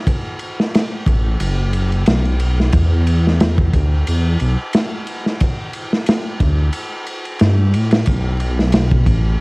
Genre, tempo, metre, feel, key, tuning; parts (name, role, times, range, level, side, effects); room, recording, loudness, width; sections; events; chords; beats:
trip hop; 90 BPM; 4/4; swing 54% on 16ths; B minor; A4 = 443 Hz
crunchy breakbeat drum kit; drums; 0.1-9.2 s; kick drum, ride cymbal, snare drum; -18 LUFS; equal
dark detuned saw bass; bass; 1.1-9.4 s; F#1 to A2; -15 LUFS; equal
little or no reverb; worn, warbling old tape, cassette tape, vinyl crackle, warbly pitch drift; -14 LUFS; side -30 dB against mid
0.0-8.1 A section; 8.1-9.4 B section
| 0.07 0.74 1.40 2.07 | 2.74 3.40 4.07 4.74 | 5.40 6.07 6.74 7.40 | 8.07 8.74